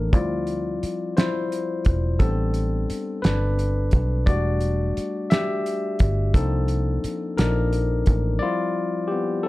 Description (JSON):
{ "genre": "slow six-eight R&B", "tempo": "58 BPM (dotted quarters)", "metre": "6/8", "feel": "straight", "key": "A minor", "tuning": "A4 = 442 Hz", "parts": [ { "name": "barky tine electric piano", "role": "accompaniment", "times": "0.0-9.5 s", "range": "F3 to E5", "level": "-25 LUFS", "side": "left 2 dB", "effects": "overdrive" }, { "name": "vintage muted fingered electric bass", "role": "bass", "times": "0.0-8.4 s", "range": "E1 to D2", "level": "-23 LUFS", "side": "equal", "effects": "none" }, { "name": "cloth-damped thuddy drum kit", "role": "drums", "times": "0.1-8.2 s", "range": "hi-hat, kick drum, snare drum", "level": "-20 LUFS", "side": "equal", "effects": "none" } ], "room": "light reverb", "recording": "none", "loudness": "-21 LUFS", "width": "side -18 dB against mid", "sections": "0.0-9.5 A section", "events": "tine electric piano solo 0.0-9.5; break 8.4-9.5", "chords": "0.1 Dm11; 2.2 Am11; 4.3 Em11; 6.3 Cm11; 8.4 Dm11", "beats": "| 0.13 1.17 | 2.20 3.23 | 4.27 5.30 | 6.34 7.37 | 8.41 9.44" }